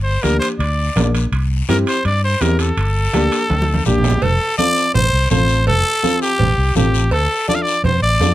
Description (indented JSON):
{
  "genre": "latin, cumbia",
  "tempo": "166 BPM",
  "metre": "4/4",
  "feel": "straight",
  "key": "unclear",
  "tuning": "A4 = 443 Hz",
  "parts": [
    { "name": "growling trumpet", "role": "melody", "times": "0.0-8.3 s", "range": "G4 to F5", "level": "-18 LUFS", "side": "equal", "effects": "none" },
    { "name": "fingered electric bass", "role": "bass", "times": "0.0-8.3 s", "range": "F1 to G2", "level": "-17 LUFS", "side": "equal", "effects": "none" },
    { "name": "warm upright piano", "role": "accompaniment", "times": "0.2-8.3 s", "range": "Bb3 to Bb4", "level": "-21 LUFS", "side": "equal", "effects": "none" },
    { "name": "congas", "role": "percussion", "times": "0.2-8.3 s", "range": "none", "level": "-23 LUFS", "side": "right 2 dB", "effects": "none" },
    { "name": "guiro", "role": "percussion", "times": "0.2-8.3 s", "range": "none", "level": "-30 LUFS", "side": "left 8 dB", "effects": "none" },
    { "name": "timbales and cowbell", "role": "percussion", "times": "0.2-8.3 s", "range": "none", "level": "-26 LUFS", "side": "right 5 dB", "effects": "none" }
  ],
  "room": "light reverb",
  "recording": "close, detailed microphones",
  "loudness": "-14 LUFS",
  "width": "side -14 dB against mid",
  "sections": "0.0-4.2 A section; 4.2-8.3 B section",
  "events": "drum fill 3.5-4.2",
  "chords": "0.0 Gm; 1.3 C; 2.8 Gmadd9; 4.2 F; 7.1 Dm",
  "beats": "0.24 0.60 0.96 | 1.33 1.69 2.05 2.42 | 2.78 3.14 3.50 3.87 | 4.23 4.59 4.95 5.31 | 5.68 6.04 6.40 6.76 | 7.12 7.49 7.85 8.21"
}